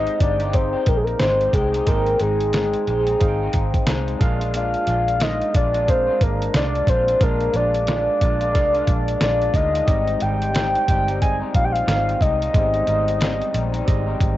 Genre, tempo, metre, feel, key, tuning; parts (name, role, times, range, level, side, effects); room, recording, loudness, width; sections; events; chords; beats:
indie pop, bedroom pop; 90 BPM; 4/4; swing 60% on 16ths; Ab lydian; A4 = 440 Hz
soft octave-layered synth lead; melody; 0.0-14.2 s; Ab4 to Ab5; -21 LUFS; equal; lush chorus, cassette tape, tape echo
barky tine electric piano; accompaniment; 0.0-14.4 s; Ab3 to G5; -31 LUFS; right 7 dB; overdrive, cassette tape
electric guitar through a small old amp; accompaniment; 0.0-14.4 s; Ab2 to G4; -28 LUFS; left 6 dB; analog chorus, warbly pitch drift
vintage muted fingered electric bass; bass; 0.0-14.4 s; G1 to D2; -24 LUFS; equal; tube saturation
lo-fi sampler-style drum kit; drums; 0.1-14.4 s; hi-hat, kick drum, snare drum; -21 LUFS; equal; overdrive, cassette tape
light reverb, digital ambience; home recording on cassette, nothing above 7.8 kHz; -17 LUFS; side -14 dB against mid
0.0-14.4 A section
0.0 Abmaj7; 4.2 Bb7; 9.9 Abmaj7
0.54 1.21 | 1.87 2.54 3.21 3.88 | 4.54 5.21 5.88 6.54 | 7.21 7.88 8.54 9.21 | 9.88 10.54 11.21 11.88 | 12.54 13.21 13.87